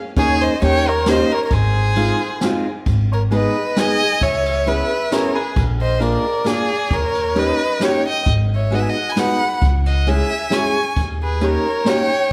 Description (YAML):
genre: musette waltz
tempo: 134 BPM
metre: 3/4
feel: swing 54% on 8ths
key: G# minor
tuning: A4 = 440 Hz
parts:
  - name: warm violin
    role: melody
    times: 0.2-12.3 s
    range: G#4 to G#5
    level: -23 LUFS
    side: equal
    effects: none
  - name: dark erhu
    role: second line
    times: 0.2-12.3 s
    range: B4 to C#6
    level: -28 LUFS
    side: equal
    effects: none
  - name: fingerpicked steel-string acoustic guitar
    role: accompaniment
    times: 0.2-12.1 s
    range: Ab3 to Ab4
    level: -24 LUFS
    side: equal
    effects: none
  - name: upright bass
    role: bass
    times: 0.2-11.6 s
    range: Ab1 to Eb2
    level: -22 LUFS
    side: equal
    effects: none
  - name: jazz brush drum kit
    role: drums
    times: 0.2-12.0 s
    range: kick drum, ride cymbal, snare drum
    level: -27 LUFS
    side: equal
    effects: none
room: moderate recital hall reverb, RT60 1.7 s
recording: none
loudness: -18 LUFS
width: mono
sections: 0.0-2.9 A section; 2.9-12.3 B section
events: none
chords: 0.2 Eb7sus4; 0.6 Eb7; 1.5 Ab6; 2.9 G#m; 4.2 C#m7; 5.6 A#7; 6.9 D#7; 8.3 G#m7; 9.6 C#m; 11.0 D#7